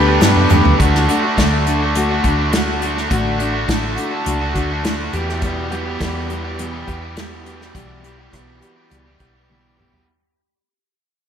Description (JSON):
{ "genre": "folk rock and heartland rock", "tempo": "103 BPM", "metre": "4/4", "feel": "straight", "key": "D major", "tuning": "A4 = 439 Hz", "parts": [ { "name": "picked steel-string acoustic guitar", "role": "accompaniment", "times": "0.0-10.1 s", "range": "E2 to G4", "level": "-22 LUFS", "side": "left 3 dB", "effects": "none" }, { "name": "hand-pumped harmonium", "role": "sustained chords", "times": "0.0-5.4 s", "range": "F#4 to B5", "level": "-27 LUFS", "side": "equal", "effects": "none" }, { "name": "raw garage guitar", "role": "riff", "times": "0.0-10.1 s", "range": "E2 to B4", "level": "-20 LUFS", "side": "right 2 dB", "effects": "overdrive, slapback echo" }, { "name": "hollow-body short-scale fingered electric bass", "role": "bass", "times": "0.0-10.0 s", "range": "A1 to G2", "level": "-21 LUFS", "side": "equal", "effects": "none" }, { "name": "unplugged drum kit", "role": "drums", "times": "0.2-10.1 s", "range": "hi-hat, kick drum, rim click, snare drum, toms", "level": "-21 LUFS", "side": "right 1 dB", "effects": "none" }, { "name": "egg shaker", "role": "percussion", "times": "0.2-0.6 s", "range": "none", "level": "-34 LUFS", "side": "right 16 dB", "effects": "none" } ], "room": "moderate lush hall reverb, RT60 2.0 s, small room ambience", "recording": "big arena sound", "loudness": "-15 LUFS", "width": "side -8 dB against mid", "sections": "0.8-10.1 A section", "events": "drum fill 0.2-0.8, 9.5-10.1; fade-out 0.8-10.1", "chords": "0.0 Gadd9; 0.8 D; 5.1 Em", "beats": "0.21 | 0.79 1.37 1.95 2.53 | 3.10 3.68 4.26 4.84 | 5.42 6.00 6.58 7.17 | 7.75 8.33 8.91 9.49" }